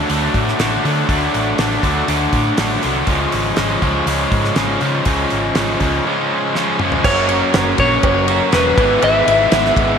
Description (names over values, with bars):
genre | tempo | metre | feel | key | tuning
classic rock | 121 BPM | 4/4 | straight | unclear | A4 = 441 Hz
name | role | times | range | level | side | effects
crunchy overdriven guitar | riff | 0.0-10.0 s | F#2 to E4 | -19 LUFS | left 7 dB | slapback echo
crunchy overdriven guitar | riff | 0.0-10.0 s | C#3 to B4 | -20 LUFS | right 9 dB | none
hollow-body short-scale fingered electric bass | bass | 0.0-9.9 s | E1 to D3 | -22 LUFS | equal | none
damped 70s drum kit | drums | 0.1-9.9 s | crash cymbal, hi-hat, kick drum, ride cymbal, snare drum, toms | -21 LUFS | equal | none
electric slide guitar | melody | 7.0-9.7 s | B4 to E5 | -16 LUFS | left 1 dB | analog delay
mellow tonewheel organ | sustained chords | 7.0-10.0 s | A#3 to E5 | -28 LUFS | right 1 dB | none
cowbell | percussion | 7.0-9.6 s | none | -28 LUFS | right 7 dB | none
room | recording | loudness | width
wet concert hall reverb, RT60 2.1 s | big arena sound | -13 LUFS | side -7 dB against mid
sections
0.0-7.0 A section; 7.0-10.0 B section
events
drum fill 6.6-7.0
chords
0.0 D; 3.1 C#; 7.0 F#; 8.8 E/G#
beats
0.10 0.59 | 1.09 1.58 2.08 2.58 | 3.07 3.57 4.07 4.57 | 5.06 5.56 6.06 6.55 | 7.05 7.54 8.04 8.53 | 9.03 9.52